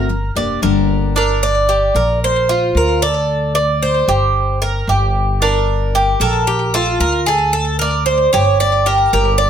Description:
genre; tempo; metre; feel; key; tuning
latin; 113 BPM; 4/4; straight; G minor; A4 = 440 Hz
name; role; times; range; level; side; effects
picked steel-string acoustic guitar; accompaniment; 0.0-1.2 s; D3 to G4; -17 LUFS; left 6 dB; none
Cuban tres; arpeggios; 0.0-9.5 s; D4 to D5; -19 LUFS; right 2 dB; none
upright bass; bass; 0.0-9.5 s; F1 to D2; -18 LUFS; equal; none
Cuban tres; melody; 1.2-9.5 s; G4 to D5; -15 LUFS; right 1 dB; slapback echo
room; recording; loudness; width
light reverb; none; -13 LUFS; side -8 dB against mid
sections
0.0-1.2 A section; 1.2-9.5 B section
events
Cuban tres solo 1.2-9.5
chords
0.1 Gm; 2.2 Bb; 3.3 D5; 4.3 Gm; 6.5 Bb; 7.5 D5; 8.6 Gm

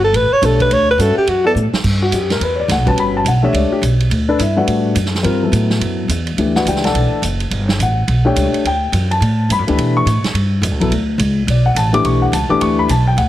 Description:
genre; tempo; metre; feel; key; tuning
modal jazz; 212 BPM; 4/4; swing 62% on 8ths; G lydian; A4 = 440 Hz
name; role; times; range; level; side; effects
mellow alto saxophone; melody; 0.0-1.5 s; F#4 to C#5; -13 LUFS; equal; none
upright bass; bass; 0.0-13.3 s; F#1 to B2; -16 LUFS; equal; none
vintage drum kit; drums; 0.1-13.3 s; crash cymbal, hi-hat, kick drum, ride cymbal, snare drum; -23 LUFS; right 3 dB; none
dark grand piano; accompaniment; 0.4-13.3 s; E3 to D6; -17 LUFS; left 3 dB; none
room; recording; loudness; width
light reverb; heavily compressed radio sound, multiband compression; -13 LUFS; side -13 dB against mid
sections
0.0-1.8 A section; 1.8-13.3 A section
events
alto saxophone solo 0.0-1.8; drum fill 1.6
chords
0.0 Gmaj9

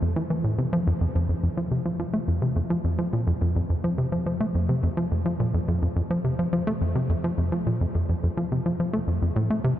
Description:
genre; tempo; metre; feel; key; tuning
ambient; 106 BPM; 4/4; straight; F major; A4 = 442 Hz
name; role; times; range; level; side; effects
tight sequencer bass; solo; 0.0-9.7 s; F2 to A3; -23 LUFS; equal; tape echo
room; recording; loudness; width
wet huge ambient reverb, RT60 7.6 s; dreamy mix soaked in reverb; -23 LUFS; side -12 dB against mid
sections
0.0-9.8 A section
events
none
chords
none

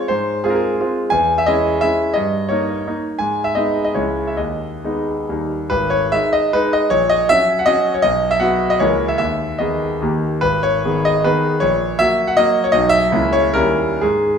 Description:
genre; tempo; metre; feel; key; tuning
classical, romantic triple-time dance for piano with dotted rhythms; 115-186 BPM; 3/4; rubato; G# minor; A4 = 440 Hz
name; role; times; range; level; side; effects
clear concert grand piano; solo; 0.0-14.4 s; G#1 to G#5; -15 LUFS; equal; none
room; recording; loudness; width
wet recital hall reverb, RT60 1.6 s; minimal, uncompressed stereo recording; -15 LUFS; side -7 dB against mid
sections
0.0-5.7 A section; 5.7-14.4 B section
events
none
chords
0.1 Fm/Ab; 1.1 C#m/E; 2.2 D#7/G; 3.2 G#m; 3.9 C#m; 4.4 G#m/D#; 5.3 D#; 5.7 G#5; 6.9 F#/A#; 8.0 B5; 8.8 A#dim/C#; 9.2 G#m/D#; 10.0 D#; 10.4 G#m; 11.6 F#/A#; 12.7 B; 13.1 A#dim/C#; 13.6 D#7b9

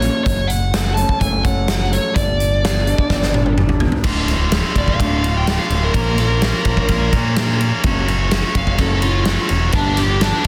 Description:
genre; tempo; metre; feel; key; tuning
quiet-loud alternative rock; 127 BPM; 4/4; straight; unclear; A4 = 435 Hz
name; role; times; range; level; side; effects
dark smooth lead guitar; melody; 0.0-10.5 s; D4 to A5; -25 LUFS; equal; overdrive, analog delay
electric guitar through a small old amp; arpeggios; 0.0-10.5 s; D2 to F4; -27 LUFS; equal; spring reverb, analog delay
growling picked electric bass; bass; 0.0-10.5 s; D1 to Bb2; -22 LUFS; equal; overdrive
huge arena drum kit; drums; 0.0-10.5 s; crash cymbal, hi-hat, kick drum, ride cymbal, snare drum, toms; -22 LUFS; equal; none
heavy high-gain guitar; riff; 4.0-10.5 s; D2 to Bb4; -24 LUFS; equal; distortion
room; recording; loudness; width
light reverb; dense, heavily limited modern master; -17 LUFS; mono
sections
0.0-4.0 A section; 4.0-10.5 B section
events
drum fill 3.1-4.0; lead electric guitar solo 4.0-10.5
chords
0.3 F#m; 2.2 G; 4.0 Dm; 5.9 Bbm; 7.8 F#m; 9.7 G

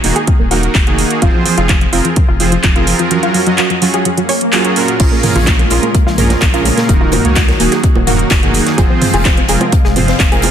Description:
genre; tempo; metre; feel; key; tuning
progressive house; 127 BPM; 4/4; straight; unclear; A4 = 439 Hz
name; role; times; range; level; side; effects
analog pluck; arpeggios; 0.0-10.5 s; F3 to Db5; -18 LUFS; left 1 dB; chorus, vintage 12-bit sampler grit, sidechain pumping, ping-pong delay
soft supersaw; stabs; 0.0-10.5 s; Bb2 to F5; -16 LUFS; right 2 dB; sidechain pumping, ping-pong delay
saturated sub bass; bass; 0.0-10.5 s; Eb1 to Db2; -17 LUFS; equal; sidechain pumping
house drum kit; drums; 0.0-10.5 s; crash cymbal, handclaps, hi-hat; -17 LUFS; right 2 dB; none
electronic kick drum; drums; 0.3-10.3 s; none; -12 LUFS; equal; none
swell; sound effects; 4.2-5.0 s; none; -19 LUFS; equal; none
airy breathy pad; sustained chords; 5.0-10.5 s; C3 to F5; -20 LUFS; left 1 dB; chorus, sidechain pumping
gated 80s drum kit; drums; 5.0-10.5 s; hi-hat, snare drum; -24 LUFS; left 3 dB; high-pass filter on hats, high-pass filter on snare, high-pass filter on room
electronic bongos, toms and congas; percussion; 5.0-10.5 s; none; -20 LUFS; right 2 dB; overdrive, sidechain pumping on perc, sidechain pumping on toms
room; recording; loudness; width
light reverb; dense, heavily limited modern master; -9 LUFS; side -9 dB against mid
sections
0.0-10.5 A section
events
swell 4.2-5.0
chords
0.0 Ebm; 1.2 Fm; 3.1 Gbmaj7; 5.0 Bbm7; 6.9 Ebm; 8.8 Fm

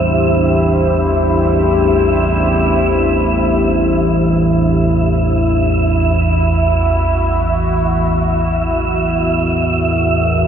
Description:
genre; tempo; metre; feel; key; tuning
dark ambient drone; free time; none; none; A in sen; A4 = 441 Hz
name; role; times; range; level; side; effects
deep dark ambient pad; sustained chords; 0.0-10.5 s; D4 to C#5; -16 LUFS; left 2 dB; chorus, built-in reverb
analog drone; drone; 0.0-10.5 s; A1 to E2; -15 LUFS; right 1 dB; chorus
wind-like tuned noise texture; texture; 0.0-10.5 s; E5; -19 LUFS; right 3 dB; built-in reverb
room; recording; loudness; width
wet lush hall reverb, RT60 2.6 s; dreamy mix soaked in reverb; -12 LUFS; side -8 dB against mid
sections
0.0-10.5 A section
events
none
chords
0.0 Am; 5.1 F#

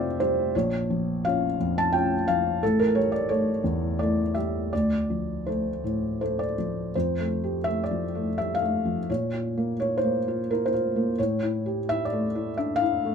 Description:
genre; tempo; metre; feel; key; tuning
neoclassical minimalist piano; 86 BPM; 3/4; rubato; F major; A4 = 440 Hz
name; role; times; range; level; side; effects
felt-muted upright piano; solo; 0.0-13.1 s; A1 to A5; -23 LUFS; equal; none
room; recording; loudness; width
light reverb; minimal, uncompressed stereo recording; -23 LUFS; side -6 dB against mid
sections
0.0-6.9 A section; 6.9-13.1 B section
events
none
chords
0.0 Fadd9; 0.5 Bbm; 2.6 A7; 4.7 Dm7; 6.9 Fadd9; 9.1 Bbm; 11.2 A7

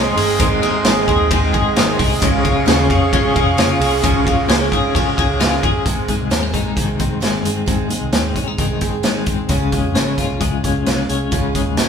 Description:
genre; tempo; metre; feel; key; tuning
jangly indie pop; 132 BPM; 4/4; straight; Ab major; A4 = 440 Hz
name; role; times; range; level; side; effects
picked steel-string acoustic guitar; accompaniment; 0.0-11.9 s; Ab2 to Ab4; -21 LUFS; right 5 dB; none
warm analog pad; sustained chords; 0.0-5.8 s; Ab4 to Db6; -21 LUFS; right 4 dB; chorus
twelve-string electric guitar; arpeggios; 0.0-11.9 s; Ab2 to Ab4; -21 LUFS; left 7 dB; tremolo
vintage muted picked electric bass; bass; 0.0-11.9 s; F1 to Ab2; -23 LUFS; equal; none
raw garage drum kit; drums; 0.2-11.9 s; hi-hat, kick drum, ride cymbal, snare drum; -18 LUFS; equal; none
room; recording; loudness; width
wet studio reverb, RT60 0.5 s; band playing live in one room; -14 LUFS; side -7 dB against mid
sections
0.0-5.9 A section; 5.9-11.9 B section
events
none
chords
0.0 Ab; 2.2 Db; 5.9 Ab; 9.5 Db

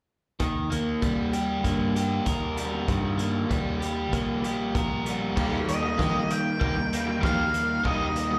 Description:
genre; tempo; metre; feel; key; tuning
indie rock; 97 BPM; 4/4; straight; unclear; A4 = 440 Hz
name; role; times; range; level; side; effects
biting overdriven guitar; riff; 0.4-8.3 s; Eb3 to Bb4; -30 LUFS; equal; slapback echo
picked electric bass; bass; 0.4-8.4 s; Bb1 to Eb3; -33 LUFS; equal; none
loose indie drum kit; drums; 0.4-8.3 s; crash cymbal, hi-hat, kick drum, snare drum; -34 LUFS; equal; none
cranked stack guitar; riff; 5.4-8.4 s; Eb3 to Eb4; -32 LUFS; equal; overdrive, analog chorus, slapback echo
octave-fuzz lead guitar; melody; 5.7-8.4 s; Eb5 to G5; -30 LUFS; equal; distortion, slapback echo
room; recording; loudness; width
light reverb; live gig heard through the venue's PA, club reverb; -27 LUFS; mono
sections
0.4-5.4 A section; 5.4-8.4 B section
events
none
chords
0.4 Eb

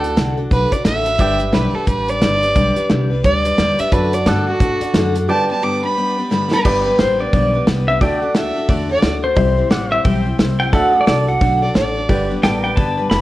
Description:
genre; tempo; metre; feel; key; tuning
honky-tonk and classic country; 176 BPM; 4/4; swing 61% on 8ths; G major; A4 = 439 Hz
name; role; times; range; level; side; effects
clear fiddle; second line; 0.0-9.1, 11.6-12.3 s; F#4 to D6; -19 LUFS; right 2 dB; none
picked steel-string acoustic guitar; accompaniment; 0.0-13.2 s; G2 to C5; -22 LUFS; left 3 dB; none
pedal steel guitar; sustained chords; 0.0-13.2 s; A4 to G5; -29 LUFS; equal; none
upright bass; bass; 0.0-13.2 s; F#1 to A2; -22 LUFS; equal; none
natural country drum kit; drums; 0.0-13.2 s; crash cymbal, hi-hat, kick drum, snare drum; -18 LUFS; equal; none
clear upright piano; accompaniment; 1.2-13.2 s; F#4 to E5; -27 LUFS; right 2 dB; none
pedal steel guitar; melody; 6.5-13.2 s; B4 to B5; -18 LUFS; equal; none
room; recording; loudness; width
moderate large studio reverb, RT60 1.3 s; worn, warbling old tape, cassette tape, warbly pitch drift; -14 LUFS; side -16 dB against mid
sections
0.0-6.7 A section; 6.7-13.2 B section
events
fiddle solo 0.0-6.7; drum fill 6.3-6.7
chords
0.0 D; 1.2 G; 3.9 D; 5.3 G; 8.0 D; 9.4 C; 10.7 D; 12.1 G

